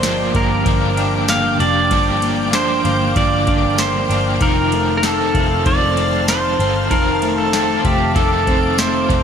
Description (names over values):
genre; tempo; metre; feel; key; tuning
dream pop; 96 BPM; 4/4; straight; G minor; A4 = 440 Hz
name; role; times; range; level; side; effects
pedal steel guitar; melody; 0.0-9.2 s; G4 to F5; -19 LUFS; right 2 dB; ping-pong delay
crunchy overdriven guitar; accompaniment; 0.0-9.2 s; G2 to A4; -23 LUFS; right 1 dB; tremolo, wide subtle chorus
shimmering ambient pad; sustained chords; 0.0-9.2 s; Bb3 to D6; -24 LUFS; left 2 dB; chorus, built-in reverb
electric guitar at the edge of break-up; arpeggios; 0.0-9.2 s; Eb3 to G4; -21 LUFS; left 2 dB; lush chorus, ping-pong delay
vintage muted picked electric bass; bass; 0.0-9.2 s; F1 to G1; -22 LUFS; equal; none
booming analog drum machine; drums; 0.0-9.2 s; kick drum, ride cymbal, snare drum, tambourine; -21 LUFS; equal; overdrive, gated reverb
room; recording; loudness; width
moderate lush hall reverb, RT60 2.5 s; bright 1980s-style digital production; -14 LUFS; side -7 dB against mid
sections
0.0-9.2 A section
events
none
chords
0.0 Gm7; 4.4 F7